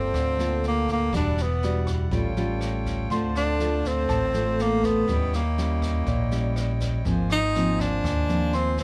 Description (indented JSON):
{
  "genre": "bossa nova",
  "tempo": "122 BPM",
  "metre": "4/4",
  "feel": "straight",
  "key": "unclear",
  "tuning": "A4 = 440 Hz",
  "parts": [
    { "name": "breathy tenor saxophone", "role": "melody", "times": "0.0-8.8 s", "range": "Bb3 to Eb4", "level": "-29 LUFS", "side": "equal", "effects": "none" },
    { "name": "nylon-string guitar", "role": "accompaniment", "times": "0.0-8.8 s", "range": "Ab2 to A4", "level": "-30 LUFS", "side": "equal", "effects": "none" },
    { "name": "warm grand piano", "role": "accompaniment", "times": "0.0-5.3, 8.5-8.8 s", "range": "A5 to D6", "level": "-38 LUFS", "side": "equal", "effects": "none" },
    { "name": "pedal harmonium", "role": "sustained chords", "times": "0.0-8.8 s", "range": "Bb3 to A5", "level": "-39 LUFS", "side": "equal", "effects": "none" },
    { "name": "fingered electric bass", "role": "bass", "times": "0.0-8.8 s", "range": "E1 to Eb2", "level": "-29 LUFS", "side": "equal", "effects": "none" },
    { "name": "jazz brush drum kit", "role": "drums", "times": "0.1-8.8 s", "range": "kick drum, rim click, snare drum", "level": "-36 LUFS", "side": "equal", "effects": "none" }
  ],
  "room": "light reverb",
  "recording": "none",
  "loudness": "-25 LUFS",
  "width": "mono",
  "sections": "0.0-8.8 A section",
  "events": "none",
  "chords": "0.0 Gm9; 1.1 Em9; 2.1 Aaug7; 3.1 Dm7; 5.1 Eb7b9; 7.1 Ab69",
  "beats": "0.14 0.64 | 1.13 1.62 2.12 2.61 | 3.10 3.60 4.09 4.59 | 5.08 5.57 6.07 6.56 | 7.05 7.55 8.04 8.53"
}